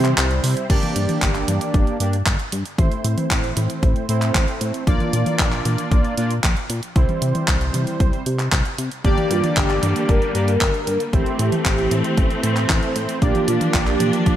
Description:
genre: italo disco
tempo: 115 BPM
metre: 4/4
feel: straight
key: G dorian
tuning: A4 = 440 Hz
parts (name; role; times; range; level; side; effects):
- mellow synth brass; melody; 0.0-0.1, 9.0-14.4 s; F4 to Bb4; -24 LUFS; right 2 dB; chorus, digital delay
- clear symphonic string section; sustained chords; 0.0-0.7, 9.0-14.4 s; C3 to D4; -25 LUFS; left 1 dB; none
- analog synth brass; stabs; 0.0-14.4 s; G3 to D5; -25 LUFS; right 2 dB; chorus
- chorused synth bass; bass; 0.0-14.4 s; G1 to C3; -22 LUFS; equal; none
- house drum kit; drums; 0.0-14.4 s; crash cymbal, handclaps, hi-hat, toms; -24 LUFS; equal; none
- electronic kick drum; drums; 0.7-14.4 s; none; -20 LUFS; equal; none
room: light reverb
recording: none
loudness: -17 LUFS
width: side -11 dB against mid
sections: 0.7-14.4 A section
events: break 0.2-0.7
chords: 0.0 C; 0.7 Gm; 2.8 Am; 4.9 Bb; 7.0 C; 9.0 Gm; 11.1 Am; 13.2 Bb

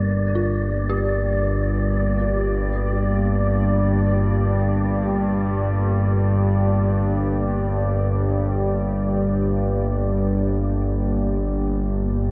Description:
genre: dark ambient drone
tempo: free time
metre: none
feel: none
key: G minor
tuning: A4 = 440 Hz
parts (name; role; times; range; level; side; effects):
- deep dark ambient pad; sustained chords; 0.1-12.3 s; Bb3 to D5; -31 LUFS; equal; chorus, built-in reverb
- dark detuned synth bell; arpeggios; 0.0-12.3 s; F4 to Bb4; -34 LUFS; equal; chorus, diffuse ambient delay
- analog drone; drone; 0.0-12.3 s; G1 to G2; -22 LUFS; equal; chorus
- wind-like tuned noise texture; texture; 0.0-12.3 s; D5; -34 LUFS; equal; built-in reverb
room: moderate huge ambient reverb, RT60 7.4 s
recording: in a vast, echoing space, cassette tape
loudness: -21 LUFS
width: mono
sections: 0.0-12.3 A section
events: fade-in on ambient pad 0.0-12.3; fade-out on synth texture 0.0-12.3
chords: 0.0 Gm

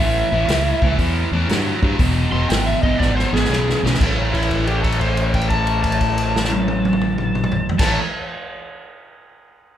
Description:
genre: blues rock power trio and southern rock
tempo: 119 BPM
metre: 4/4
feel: swing 67% on 8ths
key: A major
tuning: A4 = 443 Hz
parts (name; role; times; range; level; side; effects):
- overdriven slide guitar; melody; 0.0-8.0 s; E4 to C6; -23 LUFS; left 1 dB; none
- overdriven electric guitar; riff; 0.0-8.0 s; E2 to A3; -22 LUFS; equal; none
- growling fingered electric bass; bass; 0.0-8.0 s; E1 to G2; -22 LUFS; equal; overdrive
- vintage drum kit; drums; 0.5-7.9 s; crash cymbal, hi-hat, kick drum, snare drum, toms; -21 LUFS; equal; none
room: moderate large studio reverb, RT60 1.4 s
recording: band playing live in one room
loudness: -16 LUFS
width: side -10 dB against mid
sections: 0.0-4.0 A section; 4.0-8.0 B section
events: drum fill 3.0-4.0; held note 4.0-7.7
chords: 0.0 A7; 2.0 E; 4.0 A5

